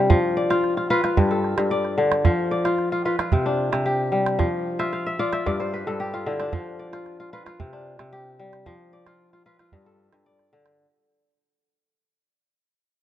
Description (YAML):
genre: west african traditional, West African string and xylophone music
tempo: 112 BPM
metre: 4/4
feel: straight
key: unclear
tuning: A4 = 439 Hz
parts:
  - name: kora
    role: arpeggios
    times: 0.0-11.4 s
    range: G2 to F5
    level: -22 LUFS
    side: left 1 dB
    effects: none
  - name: calabash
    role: percussion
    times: 0.1-10.8 s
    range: none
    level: -22 LUFS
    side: right 4 dB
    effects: none
room: moderate plate reverb, RT60 2.6 s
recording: worn, warbling old tape, cassette tape, warbly pitch drift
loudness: -21 LUFS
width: side -12 dB against mid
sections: 0.0-10.8 A section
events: fade-out 0.0-10.8; kora fill 4.8-6.5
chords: 0.1 Bdim/F; 1.2 G; 2.2 Bdim/F; 3.3 C5; 4.4 N.C.; 5.5 G5; 6.5 Bdim/F; 7.6 C5; 8.7 Bdim/F; 9.7 G